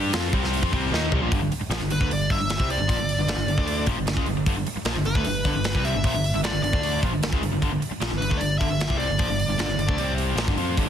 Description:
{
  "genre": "hard rock",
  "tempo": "152 BPM",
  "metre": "4/4",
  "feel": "straight",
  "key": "unclear",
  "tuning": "A4 = 441 Hz",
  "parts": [
    { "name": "cranked stack guitar", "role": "riff", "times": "0.0-10.9 s", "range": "G2 to G4", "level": "-29 LUFS", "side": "left 11 dB", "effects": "overdrive" },
    { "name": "overdriven electric guitar", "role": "riff", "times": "0.0-10.9 s", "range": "G2 to G4", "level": "-29 LUFS", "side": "right 10 dB", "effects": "none" },
    { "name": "modern bright picked electric bass", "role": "bass", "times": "0.0-10.9 s", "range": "G1 to G2", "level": "-28 LUFS", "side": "equal", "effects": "none" },
    { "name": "tight metal drum kit", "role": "drums", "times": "0.1-10.9 s", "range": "hi-hat, kick drum, snare drum, toms", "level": "-26 LUFS", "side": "equal", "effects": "soft clipping on snare" },
    { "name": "dark smooth lead guitar", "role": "melody", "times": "1.9-10.1 s", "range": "B4 to E5", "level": "-28 LUFS", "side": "equal", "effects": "overdrive, analog delay" }
  ],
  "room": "small room ambience",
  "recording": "dense, heavily limited modern master, lossy compression artefacts",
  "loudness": "-21 LUFS",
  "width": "side -9 dB against mid",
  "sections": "0.0-1.3 A section; 1.3-10.9 B section",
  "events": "drum fill 0.9-1.3",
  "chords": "0.0 C5; 1.3 G5; 10.0 C5; 10.4 G5"
}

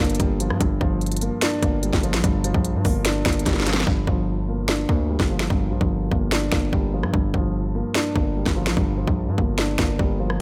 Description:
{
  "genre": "hip hop, trap",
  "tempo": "147 BPM",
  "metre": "4/4",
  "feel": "half-time",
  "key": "G minor",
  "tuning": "A4 = 444 Hz",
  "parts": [
    { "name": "dark concert grand piano", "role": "accompaniment", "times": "0.0-10.4 s", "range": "G2 to D4", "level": "-27 LUFS", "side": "equal", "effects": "low-pass filter" },
    { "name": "distorted 808-style bass", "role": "bass", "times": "0.0-10.4 s", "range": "G1 to G2", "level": "-27 LUFS", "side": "equal", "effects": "distortion" },
    { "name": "trap drum kit", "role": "drums", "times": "0.0-10.4 s", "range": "finger snaps, hi-hat, kick drum, rim click, snare drum", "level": "-25 LUFS", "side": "equal", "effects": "none" }
  ],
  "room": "little or no reverb",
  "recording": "none",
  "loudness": "-22 LUFS",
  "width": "mono",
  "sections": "0.0-3.9 A section; 3.9-10.4 B section",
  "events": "drum fill 3.5-3.9; hi-hats muted 3.9-10.4",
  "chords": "0.0 Gm7"
}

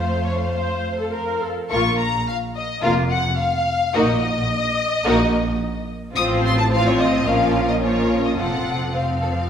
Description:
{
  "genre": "quick classical-period movement for string orchestra",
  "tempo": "108 BPM",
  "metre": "4/4",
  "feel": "straight",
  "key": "Bb minor",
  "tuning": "A4 = 439 Hz",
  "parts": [
    { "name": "warm studio violin section", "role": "melody", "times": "0.0-9.5 s", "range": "Db5 to Eb6", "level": "-23 LUFS", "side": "left 3 dB", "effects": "none" },
    { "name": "warm studio violin section", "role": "second line", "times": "0.0-9.3 s", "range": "F4 to C5", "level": "-26 LUFS", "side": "left 2 dB", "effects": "none" },
    { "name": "rich studio viola section", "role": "accompaniment", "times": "0.0-9.5 s", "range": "F3 to Db5", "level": "-24 LUFS", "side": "equal", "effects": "none" },
    { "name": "dark studio double bass section", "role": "bass", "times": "0.0-9.5 s", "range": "F1 to F2", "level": "-26 LUFS", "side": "right 2 dB", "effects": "none" },
    { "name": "warm studio cello section", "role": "bass", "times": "0.0-9.5 s", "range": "F2 to A3", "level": "-27 LUFS", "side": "right 1 dB", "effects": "none" }
  ],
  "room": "wet recital hall reverb, RT60 1.7 s",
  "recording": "heard from further back in the room",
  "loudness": "-18 LUFS",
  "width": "side -8 dB against mid",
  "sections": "0.0-1.7 A section; 1.7-9.5 B section",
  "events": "none",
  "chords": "0.0 F; 1.7 Bb5; 3.9 Ebm/Bb; 6.2 F/A; 7.3 Bbm; 8.4 F"
}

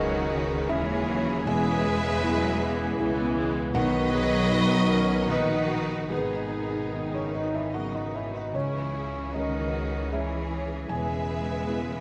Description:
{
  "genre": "cinematic",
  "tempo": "73-80 BPM",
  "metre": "3/4",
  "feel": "rubato",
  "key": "unclear",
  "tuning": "A4 = 441 Hz",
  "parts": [
    { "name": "warm symphonic violin section", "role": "melody", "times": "0.0-12.0 s", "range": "G#4 to E5", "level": "-38 LUFS", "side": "equal", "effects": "none" },
    { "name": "dark clarinet", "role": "second line", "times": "0.0-12.0 s", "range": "D#4 to B4", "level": "-37 LUFS", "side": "equal", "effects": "none" },
    { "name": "dark cor anglais", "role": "second line", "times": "0.0-12.0 s", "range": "B3 to G#4", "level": "-38 LUFS", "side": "equal", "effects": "none" },
    { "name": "dark symphonic violin section", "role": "second line", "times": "0.0-12.0 s", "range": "D#4 to B4", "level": "-39 LUFS", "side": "equal", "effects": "none" },
    { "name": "felt-muted upright piano", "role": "accompaniment", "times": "0.0-12.0 s", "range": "E1 to G#5", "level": "-34 LUFS", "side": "equal", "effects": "none" },
    { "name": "rich symphonic viola section", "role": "accompaniment", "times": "0.0-12.0 s", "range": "C#3 to D#4", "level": "-36 LUFS", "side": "equal", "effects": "none" },
    { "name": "dark French horn section", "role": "sustained chords", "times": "0.0-12.0 s", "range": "B2 to G#4", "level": "-37 LUFS", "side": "equal", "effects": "none" },
    { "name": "clear symphonic double bass section", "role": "bass", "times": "0.0-12.0 s", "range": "G#1 to E2", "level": "-36 LUFS", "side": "equal", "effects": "none" },
    { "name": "rich symphonic cello section", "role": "bass", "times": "0.0-12.0 s", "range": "B2 to G#3", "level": "-34 LUFS", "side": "equal", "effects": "none" },
    { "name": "timpani", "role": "percussion", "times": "3.8-4.9 s", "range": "B2", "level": "-39 LUFS", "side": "equal", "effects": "none" }
  ],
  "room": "wet concert hall reverb, RT60 1.9 s",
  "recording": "none",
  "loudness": "-27 LUFS",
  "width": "mono",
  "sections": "0.0-12.0 A section",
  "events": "none",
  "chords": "0.0 C#m; 1.5 E; 3.8 B; 6.1 G#m; 8.5 C#m; 10.9 E"
}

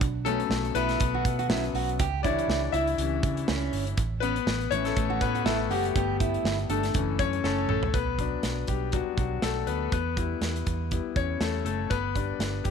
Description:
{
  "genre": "piano-driven pop",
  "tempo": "121 BPM",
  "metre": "4/4",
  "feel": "swing 56% on 16ths",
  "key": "B minor",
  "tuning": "A4 = 440 Hz",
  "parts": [
    { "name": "bright concert grand piano", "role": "accompaniment", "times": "0.0-12.7 s", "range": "E3 to E5", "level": "-29 LUFS", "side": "left 12 dB", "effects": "none" },
    { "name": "vintage muted fingered electric bass", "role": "bass", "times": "0.0-12.7 s", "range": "F#1 to C#3", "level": "-31 LUFS", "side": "right 2 dB", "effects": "none" },
    { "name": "modern studio drum kit", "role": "drums", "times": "0.0-12.7 s", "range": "hi-hat, kick drum, snare drum, toms", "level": "-31 LUFS", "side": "right 2 dB", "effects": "none" },
    { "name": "fingerpicked steel-string acoustic guitar", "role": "riff", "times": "0.3-7.8 s", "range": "C#4 to G4", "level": "-32 LUFS", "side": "right 14 dB", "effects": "none" }
  ],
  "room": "light reverb, small room ambience",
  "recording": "1960s-style stereo with parts hard left and right",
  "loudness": "-25 LUFS",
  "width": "side -6 dB against mid",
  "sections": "0.0-7.9 A section; 7.9-12.7 B section",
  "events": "grand piano solo 0.0-7.9, 7.9-12.7; drum fill 7.4-7.9",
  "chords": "0.0 Bsus2; 2.0 C#dim; 4.0 A; 6.0 Gadd9; 7.0 F#m7; 7.9 Bm; 9.9 Em; 11.9 G"
}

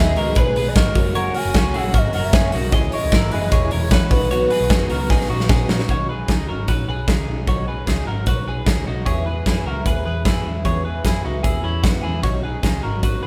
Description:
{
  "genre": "jangly indie pop",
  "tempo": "152 BPM",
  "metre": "4/4",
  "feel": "straight",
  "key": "B major",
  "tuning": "A4 = 440 Hz",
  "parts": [
    { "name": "warbly nostalgic lead", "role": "melody", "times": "0.0-5.5 s", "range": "B4 to G#5", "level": "-26 LUFS", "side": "equal", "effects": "chorus" },
    { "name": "fingerpicked plugged-in twelve-string acoustic guitar", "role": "accompaniment", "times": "0.0-13.3 s", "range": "F#2 to E4", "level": "-31 LUFS", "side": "equal", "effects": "none" },
    { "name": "warm upright piano", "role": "accompaniment", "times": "0.0-5.9 s", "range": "B3 to C#5", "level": "-37 LUFS", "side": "equal", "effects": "none" },
    { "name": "warm studio string section", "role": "sustained chords", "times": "0.0-5.9 s", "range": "C#3 to G#4", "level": "-33 LUFS", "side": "equal", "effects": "none" },
    { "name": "twelve-string electric guitar", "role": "arpeggios", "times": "0.0-13.3 s", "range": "B3 to D#5", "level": "-29 LUFS", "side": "equal", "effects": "none" },
    { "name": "vintage muted picked electric bass", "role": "bass", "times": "0.0-13.3 s", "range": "E1 to F#2", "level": "-27 LUFS", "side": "equal", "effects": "none" },
    { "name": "big rock drum kit", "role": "drums", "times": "0.2-13.1 s", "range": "hi-hat, kick drum, snare drum", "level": "-22 LUFS", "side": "equal", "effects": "none" }
  ],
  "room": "moderate large studio reverb, RT60 1.2 s",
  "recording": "band playing live in one room",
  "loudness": "-19 LUFS",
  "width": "mono",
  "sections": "0.0-5.9 A section; 5.9-13.3 B section",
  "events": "drum fill 5.1-5.9",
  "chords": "0.0 G#m; 1.0 F#; 2.7 C#m; 4.1 B; 5.9 Badd9; 9.1 E; 12.2 Badd9"
}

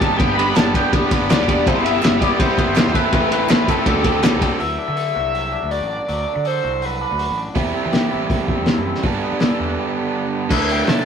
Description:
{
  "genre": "indie rock",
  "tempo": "163 BPM",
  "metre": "4/4",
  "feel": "straight",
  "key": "unclear",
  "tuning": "A4 = 440 Hz",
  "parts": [
    { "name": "overdriven synth lead", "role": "melody", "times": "0.0-7.4, 10.7-11.1 s", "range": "A4 to B5", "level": "-22 LUFS", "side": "equal", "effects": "phaser" },
    { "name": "biting overdriven guitar", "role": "riff", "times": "0.0-4.6, 7.5-11.1 s", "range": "G2 to G4", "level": "-21 LUFS", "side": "right 6 dB", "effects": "none" },
    { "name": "twangy electric guitar", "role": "riff", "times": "0.0-11.1 s", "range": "F#3 to B4", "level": "-24 LUFS", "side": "left 8 dB", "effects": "none" },
    { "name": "fuzz fingered electric bass", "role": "bass", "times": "0.0-11.1 s", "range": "E1 to G3", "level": "-27 LUFS", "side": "equal", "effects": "overdrive" },
    { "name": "cloth-damped thuddy drum kit", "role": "drums", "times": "0.0-11.0 s", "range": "crash cymbal, hi-hat, kick drum, ride cymbal, snare drum", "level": "-19 LUFS", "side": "left 1 dB", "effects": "none" },
    { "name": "group handclap", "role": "percussion", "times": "0.6-4.3 s", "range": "none", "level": "-33 LUFS", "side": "left 3 dB", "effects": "none" }
  ],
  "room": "moderate small room ambience, RT60 0.5 s",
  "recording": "rough rehearsal-room recording",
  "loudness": "-16 LUFS",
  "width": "side -7 dB against mid",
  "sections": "0.0-4.6 A section; 4.6-10.5 B section",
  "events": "break 9.8-10.5",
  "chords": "0.2 G; 1.7 Cmaj7/G; 3.0 Amadd9; 3.9 D7sus4; 4.6 D; 7.6 C; 9.0 Gadd9; 10.5 Dsus2"
}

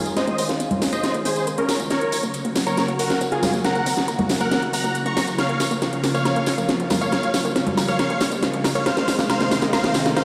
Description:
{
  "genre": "uplifting trance",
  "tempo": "138 BPM",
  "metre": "4/4",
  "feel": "straight",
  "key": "Bb minor",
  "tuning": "A4 = 438 Hz",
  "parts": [
    { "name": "big supersaw lead", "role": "melody", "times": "0.0-10.2 s", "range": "Db4 to Db6", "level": "-27 LUFS", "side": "equal", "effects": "phaser, low-pass filter, tape echo" },
    { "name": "lush unison pad", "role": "sustained chords", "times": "0.0-10.2 s", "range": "C3 to Gb4", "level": "-29 LUFS", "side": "equal", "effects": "chorus, phaser" },
    { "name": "riser", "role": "sound effects", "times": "0.1-10.2 s", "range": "none", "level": "-35 LUFS", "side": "equal", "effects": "none" },
    { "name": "plucky analog bass", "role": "bass", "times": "0.1-10.1 s", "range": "Gb1 to Db2", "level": "-37 LUFS", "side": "equal", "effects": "none" },
    { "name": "house drum kit", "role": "drums", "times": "0.1-10.2 s", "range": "congas, hi-hat, snare drum", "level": "-26 LUFS", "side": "equal", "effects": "none" },
    { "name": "tambourine", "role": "percussion", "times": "0.1-10.2 s", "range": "none", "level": "-35 LUFS", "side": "equal", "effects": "none" },
    { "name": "analog pluck", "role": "arpeggios", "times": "0.2-10.2 s", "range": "Bb3 to Bb4", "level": "-31 LUFS", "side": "equal", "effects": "chorus, vintage 12-bit sampler grit, tape echo" }
  ],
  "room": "moderate huge ambient reverb, RT60 8.1 s",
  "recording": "played on a big sound system in a bare room, stone room reverb",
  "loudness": "-21 LUFS",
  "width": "mono",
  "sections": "0.0-10.2 A section",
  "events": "build-up 0.0-10.2; drum fill 0.0-10.2; filter sweep on supersaw synth 0.0-10.2; filter sweep on synth arpeggio sound 0.0-10.2",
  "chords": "0.0 Dbadd9; 1.9 Gb; 5.4 Bbm; 8.9 Ab"
}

